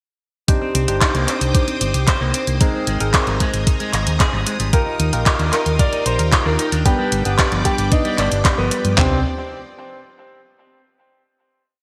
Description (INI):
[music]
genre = italo disco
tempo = 113 BPM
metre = 4/4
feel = straight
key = C minor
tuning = A4 = 440 Hz
[part]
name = string machine, full ensemble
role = sustained chords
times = 0.5-9.2 s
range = C4 to Eb6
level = -30 LUFS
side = equal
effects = ensemble chorus
[part]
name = electric guitar with an envelope filter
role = arpeggios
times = 0.5-9.2 s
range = F3 to Eb5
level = -29 LUFS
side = equal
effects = spring reverb, delay
[part]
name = barky tine electric piano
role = stabs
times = 0.5-9.2 s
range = B3 to C5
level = -28 LUFS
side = equal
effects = phaser, low-pass filter, delay
[part]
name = clean 12-bit digital drum machine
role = drums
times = 0.5-9.1 s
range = handclaps, kick drum, toms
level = -20 LUFS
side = equal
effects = small room reverb
[part]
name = house drum kit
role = drums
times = 0.5-9.0 s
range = handclaps, hi-hat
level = -23 LUFS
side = equal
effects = small room reverb, gated reverb
[part]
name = hollow-body short-scale fingered electric bass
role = bass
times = 0.7-9.2 s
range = G1 to G2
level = -23 LUFS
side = equal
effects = tube saturation
[part]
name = clear baby grand piano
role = melody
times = 4.7-9.2 s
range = B3 to D5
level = -26 LUFS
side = equal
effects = delay
[sound]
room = moderate lush hall reverb, RT60 1.9 s, digital ambience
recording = bright 1980s-style digital production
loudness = -18 LUFS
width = mono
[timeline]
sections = 0.5-9.0 verse; 9.0-11.1 final chord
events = filter sweep on tine electric piano 0.5-9.0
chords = 0.5 Cmadd9; 2.6 Abadd9; 4.7 Ebadd9; 6.9 G; 9.0 Cmadd9